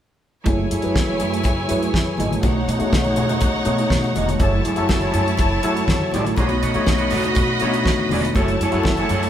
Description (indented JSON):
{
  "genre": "disco",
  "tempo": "122 BPM",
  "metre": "4/4",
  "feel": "straight",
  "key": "F# dorian",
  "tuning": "A4 = 440 Hz",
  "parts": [
    { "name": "electric guitar at the edge of break-up", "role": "accompaniment", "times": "0.4-9.3 s", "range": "A3 to D#5", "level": "-26 LUFS", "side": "right 5 dB", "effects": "low-pass filter" },
    { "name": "clear studio string section", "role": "second line", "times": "0.5-9.3 s", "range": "D#4 to B5", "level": "-24 LUFS", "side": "right 1 dB", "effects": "none" },
    { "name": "tine electric piano", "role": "accompaniment", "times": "0.5-9.3 s", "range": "B2 to C#5", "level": "-23 LUFS", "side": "left 3 dB", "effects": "overdrive, low-pass filter" },
    { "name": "upright bass", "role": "bass", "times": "0.5-9.3 s", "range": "E1 to B2", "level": "-25 LUFS", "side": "equal", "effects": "none" },
    { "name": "damped 70s drum kit", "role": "drums", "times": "0.5-9.3 s", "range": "hi-hat, kick drum, snare drum", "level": "-22 LUFS", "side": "equal", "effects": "none" },
    { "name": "congas", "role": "percussion", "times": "0.5-9.2 s", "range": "none", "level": "-30 LUFS", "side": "left 3 dB", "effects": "none" },
    { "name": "mellow French horn section", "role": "sustained chords", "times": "8.3-9.3 s", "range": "F#3 to A4", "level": "-29 LUFS", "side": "left 1 dB", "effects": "low-pass filter" }
  ],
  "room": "moderate large studio reverb, RT60 1.2 s",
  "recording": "band playing live in one room",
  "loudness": "-17 LUFS",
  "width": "side -10 dB against mid",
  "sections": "0.5-9.3 A section",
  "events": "filter sweep 0.5-9.3",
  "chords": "0.5 F#m9; 2.4 B9; 4.4 F#m9; 6.4 B9; 8.4 F#m9",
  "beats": "| 0.46 0.95 1.45 1.94 | 2.43 2.93 3.42 3.92 | 4.41 4.90 5.39 5.89 | 6.38 6.88 7.37 7.86 | 8.36 8.85"
}